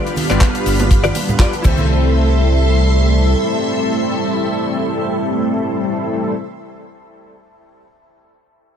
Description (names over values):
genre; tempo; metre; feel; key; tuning
nu-disco, nu disco; 122 BPM; 4/4; swing 54% on 16ths; C major; A4 = 441 Hz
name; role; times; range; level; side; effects
mellow synth brass; accompaniment; 0.0-6.4 s; G3 to B4; -19 LUFS; equal; chorus, dub echo
string machine, full ensemble; sustained chords; 0.0-6.3 s; G4 to C6; -23 LUFS; right 1 dB; phaser, ensemble chorus, sidechain pumping
direct-recorded clean electric guitar; riff; 0.0-6.4 s; E4 to D5; -24 LUFS; left 3 dB; ensemble chorus, dub echo
damped 70s drum kit; drums; 0.1-1.8 s; crash cymbal, handclaps, hi-hat; -25 LUFS; left 2 dB; studio reverb
congas, cabasa and bongos; percussion; 0.2-1.9 s; none; -23 LUFS; right 3 dB; none
fingered electric bass; bass; 0.3-3.3 s; G1 to C2; -14 LUFS; equal; sidechain pumping
kick drum; drums; 0.4-1.8 s; none; -14 LUFS; equal; studio reverb
room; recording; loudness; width
small room ambience; none; -14 LUFS; side -8 dB against mid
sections
0.0-1.9 A section; 1.9-5.8 B section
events
drop 0.0-1.9; band accent 1.4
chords
0.0 G7; 1.6 C6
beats
0.42 0.91 1.40 | 1.89 2.39 2.88 3.37 | 3.86 4.35 4.84 5.34